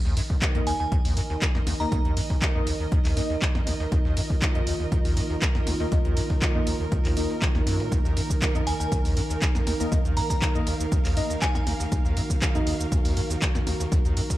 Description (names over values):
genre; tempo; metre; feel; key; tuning
acid house; 120 BPM; 4/4; straight; Eb minor; A4 = 440 Hz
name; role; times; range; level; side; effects
dark analog pad; sustained chords; 0.2-14.4 s; Eb3 to Bb4; -33 LUFS; right 1 dB; chorus, sidechain pumping
acid bass, square; riff; 0.0-14.4 s; Eb2 to Eb3; -28 LUFS; equal; overdrive, lush chorus, sidechain pumping
dark chamber string section; texture; 0.0-14.4 s; Bb3 to F5; -35 LUFS; right 3 dB; sidechain pumping
breakbeat sampler-style drum kit; drums; 0.1-14.4 s; hi-hat, snare drum; -42 LUFS; right 1 dB; none
punchy analog drum machine; drums; 0.2-14.4 s; cabasa, handclaps, hi-hat, snare drum; -32 LUFS; equal; none
electronic kick drum; drums; 0.3-14.4 s; none; -25 LUFS; equal; none
deep mellow chord stab; stabs; 0.6-12.7 s; Bb3 to Eb5; -34 LUFS; left 2 dB; chorus, phaser, tape echo
glassy synth bell; melody; 0.7-2.3, 8.7-11.6 s; Ab5 to Bb5; -34 LUFS; right 1 dB; chorus, tape echo
room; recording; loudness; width
light reverb, digital ambience; dark, warm production; -22 LUFS; side -15 dB against mid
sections
0.0-14.4 A section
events
none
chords
0.0 Eb5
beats
0.42 0.92 1.42 | 1.92 2.42 2.92 3.42 | 3.92 4.42 4.92 5.42 | 5.92 6.42 6.92 7.42 | 7.92 8.42 8.92 9.42 | 9.92 10.42 10.92 11.42 | 11.92 12.42 12.92 13.42 | 13.92